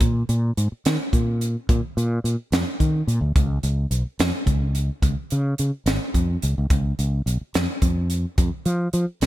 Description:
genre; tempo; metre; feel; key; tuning
electric jazz fusion; 72 BPM (dotted quarters); 6/8; straight; unclear; A4 = 440 Hz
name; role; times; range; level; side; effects
fretless electric bass; bass; 0.0-9.3 s; Ab1 to F3; -21 LUFS; equal; none
crisp fusion drum kit; drums; 0.0-9.3 s; hi-hat, kick drum, snare drum; -22 LUFS; equal; none
room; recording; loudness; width
little or no reverb; bright 1980s-style digital production; -20 LUFS; side -15 dB against mid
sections
0.0-9.3 A section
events
none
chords
none

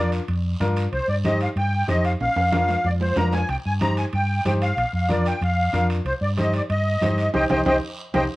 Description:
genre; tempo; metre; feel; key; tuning
latin, cumbia; 187 BPM; 4/4; straight; C minor; A4 = 444 Hz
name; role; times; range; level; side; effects
musette accordion; melody; 0.0-8.2 s; C5 to Bb5; -24 LUFS; equal; none
bright upright piano; accompaniment; 0.0-8.2 s; D4 to C5; -26 LUFS; left 1 dB; none
hollow-body short-scale fingered electric bass; bass; 0.0-8.3 s; Bb1 to G2; -23 LUFS; equal; none
guiro; percussion; 0.1-8.2 s; none; -40 LUFS; right 3 dB; none
timbales; percussion; 0.1-8.2 s; none; -33 LUFS; right 4 dB; none
congas; percussion; 0.3-8.2 s; none; -30 LUFS; equal; none
room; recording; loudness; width
light reverb; worn, warbling old tape, cassette tape, warbly pitch drift; -20 LUFS; side -19 dB against mid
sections
0.0-8.4 A section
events
drum fill 2.2-3.5, 7.7-8.4; band accent 7.3-8.4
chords
0.0 Bb; 0.9 Cm; 2.2 Bb; 3.5 Cm; 4.8 Bb; 6.1 Cm

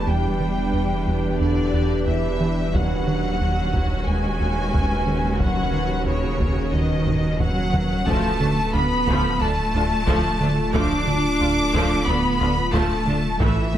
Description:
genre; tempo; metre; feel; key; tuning
cinematic, hybrid orchestral and electronic film score; 90 BPM; 4/4; straight; unclear; A4 = 439 Hz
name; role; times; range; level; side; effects
rich symphonic violin section; melody; 0.0-13.8 s; C#5 to D6; -26 LUFS; left 2 dB; none
rich symphonic viola section; accompaniment; 0.0-13.8 s; E3 to G4; -29 LUFS; right 1 dB; none
deep dark ambient pad; sustained chords; 0.0-13.8 s; C#3 to B4; -28 LUFS; equal; chorus, built-in reverb
punchy sub bass; bass; 0.0-13.8 s; D1 to A1; -29 LUFS; equal; none
rich symphonic cello section; bass; 0.0-13.8 s; C#3 to D4; -26 LUFS; right 1 dB; none
rich symphonic double bass section; bass; 0.0-13.8 s; A1 to E2; -29 LUFS; right 2 dB; none
rubbery square bass; riff; 0.1-13.8 s; D2 to A3; -25 LUFS; right 1 dB; none
taiko ensemble; drums; 2.7-13.8 s; none; -28 LUFS; equal; none
room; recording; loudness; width
light reverb; close, detailed microphones; -19 LUFS; side -11 dB against mid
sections
0.0-13.8 A section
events
drum fill 7.1-8.1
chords
0.0 Em7; 2.7 Badd9/D#; 8.1 Dm

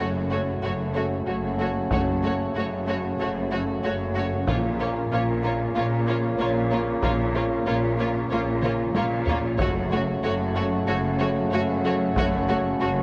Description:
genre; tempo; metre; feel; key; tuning
cinematic, epic orchestral film score; 94 BPM; 4/4; straight; unclear; A4 = 438 Hz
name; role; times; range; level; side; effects
dark symphonic violin section; melody; 0.0-12.9 s; Db5; -36 LUFS; equal; none
warm symphonic violin section; second line; 0.0-12.9 s; F4 to Gb4; -34 LUFS; equal; none
warm symphonic viola section; accompaniment; 0.0-12.9 s; A3 to Bb3; -36 LUFS; equal; none
bright trombone section; sustained chords; 0.0-13.0 s; Db3 to Bb3; -33 LUFS; equal; none
warm French horn section; sustained chords; 0.0-13.0 s; Db4 to Gb4; -32 LUFS; equal; none
rich symphonic cello section; bass; 0.0-13.0 s; Gb2 to Bb2; -32 LUFS; equal; none
warm symphonic double bass section; bass; 0.0-13.0 s; Gb1 to Bb1; -32 LUFS; equal; none
impact; sound effects; 0.0-1.9 s; none; -53 LUFS; equal; none
solo taiko drums; drums; 1.9-12.8 s; none; -31 LUFS; equal; none
timpani; percussion; 4.5-5.4 s; Bb2; -35 LUFS; equal; none
room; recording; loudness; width
moderate scoring stage reverb, RT60 2.1 s; worn, warbling old tape, cassette tape, warbly pitch drift; -25 LUFS; mono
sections
0.0-13.0 A section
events
impact 0.0-1.9; drum fill 8.6-9.6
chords
0.0 Gbm; 4.5 Bbm; 9.6 Gbm

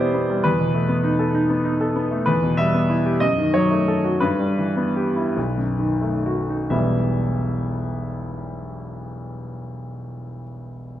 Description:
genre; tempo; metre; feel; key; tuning
classical, romantic character piece for solo piano; 41-67 BPM (dotted quarters); 6/8; rubato; E minor; A4 = 439 Hz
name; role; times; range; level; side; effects
clear grand piano; solo; 0.0-11.0 s; E1 to E5; -20 LUFS; equal; none
room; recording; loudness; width
wet recital hall reverb, RT60 1.6 s; dark, warm production; -19 LUFS; side -12 dB against mid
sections
0.0-6.7 A section; 6.7-11.0 B section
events
slowing down 1.3-6.7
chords
0.4 B7/E; 2.3 Em; 3.2 D#dim/F#; 4.2 Em/G; 5.3 B7; 6.7 Em

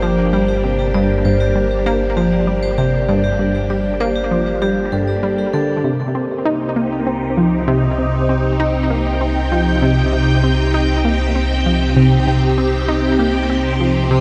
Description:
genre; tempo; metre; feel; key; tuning
ambient, sequencer-driven space music; 98 BPM; 4/4; straight; C minor from 5.8 s; A4 = 441 Hz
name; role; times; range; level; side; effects
phased string machine; sustained chords; 0.0-14.2 s; C3 to G5; -21 LUFS; equal; ensemble chorus, phaser
vibraphone with hard mallets; arpeggios; 0.0-5.9 s; G4 to D5; -24 LUFS; equal; delay
analog pluck; riff; 0.0-14.2 s; G2 to Eb4; -20 LUFS; equal; chorus, delay
round analog bass; bass; 0.0-14.2 s; G1 to C2; -24 LUFS; equal; none
room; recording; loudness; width
wet cathedral reverb, RT60 5.2 s; in a vast, echoing space; -17 LUFS; mono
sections
0.0-5.8 A section; 5.8-14.2 B section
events
none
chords
0.0 Gm; 5.8 Cm

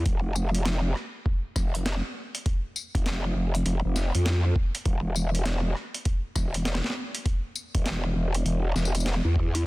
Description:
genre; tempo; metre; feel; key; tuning
glitch hop; 100 BPM; 4/4; swing 63% on 16ths; unclear; A4 = 442 Hz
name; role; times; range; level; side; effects
growl bass; bass; 0.0-9.6 s; E1 to F2; -25 LUFS; equal; chorus, tube saturation
boom bap sampler-style drum kit; drums; 0.1-9.6 s; hi-hat, rim click, snare drum, tambourine; -32 LUFS; equal; none
electronic kick drum; drums; 0.1-9.5 s; none; -25 LUFS; equal; none
room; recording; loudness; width
little or no reverb; dense, heavily limited modern master; -25 LUFS; side -20 dB against mid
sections
0.0-9.7 A section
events
none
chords
none

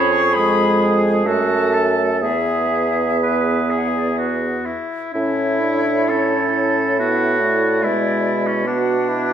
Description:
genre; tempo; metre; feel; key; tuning
classical, slow romantic movement for wind quintet; 60-73 BPM; 3/4; rubato; A major; A4 = 440 Hz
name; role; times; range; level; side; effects
bright concert flute; melody; 0.0-9.3 s; C#5 to C#6; -25 LUFS; left 6 dB; none
warm oboe; second line; 0.0-9.3 s; C#4 to B4; -22 LUFS; left 1 dB; none
clear clarinet; accompaniment; 0.0-9.3 s; E4 to C#5; -24 LUFS; right 7 dB; none
warm French horn; accompaniment; 0.0-9.3 s; G#3 to D4; -23 LUFS; left 1 dB; none
mellow bassoon; bass; 0.0-9.3 s; E2 to B2; -21 LUFS; right 2 dB; none
room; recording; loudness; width
wet recital hall reverb, RT60 1.5 s; none; -16 LUFS; side -9 dB against mid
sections
0.0-5.1 A section; 5.1-9.3 B section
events
none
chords
0.0 C#/E#; 1.2 F#m; 2.2 E; 5.1 A; 7.8 E7/B

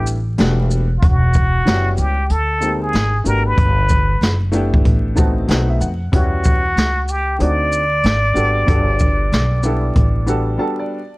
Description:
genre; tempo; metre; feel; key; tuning
hip hop, jazz-hop; 94 BPM; 4/4; swing 62% on 16ths; E dorian; A4 = 440 Hz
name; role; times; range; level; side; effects
trumpet with plunger mute; melody; 0.0-10.6 s; F4 to D5; -19 LUFS; equal; none
warm upright piano; accompaniment; 0.0-11.2 s; F#3 to A5; -22 LUFS; left 1 dB; none
upright bass; bass; 0.0-10.6 s; E1 to F2; -18 LUFS; equal; none
jazz brush drum kit; drums; 0.1-10.5 s; hi-hat, kick drum, shaker, snare drum; -16 LUFS; equal; none
room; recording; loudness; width
little or no reverb; dry, gritty hardware recording, vinyl crackle; -14 LUFS; side -22 dB against mid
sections
0.0-1.0 A section; 1.0-11.2 B section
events
muted trumpet solo 0.0-1.0; upright piano fill 4.8-6.1, 10.3-11.2; break 10.6-11.2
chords
0.4 Em11; 1.0 Em69; 2.3 D5; 2.9 G#maj9; 3.6 Gmaj9; 4.8 A7sus4; 5.5 B7b9; 6.1 Em69; 7.4 D7b9; 8.0 G#m7b5; 8.7 Gmaj9; 10.0 A7sus4; 10.6 Gmaj9

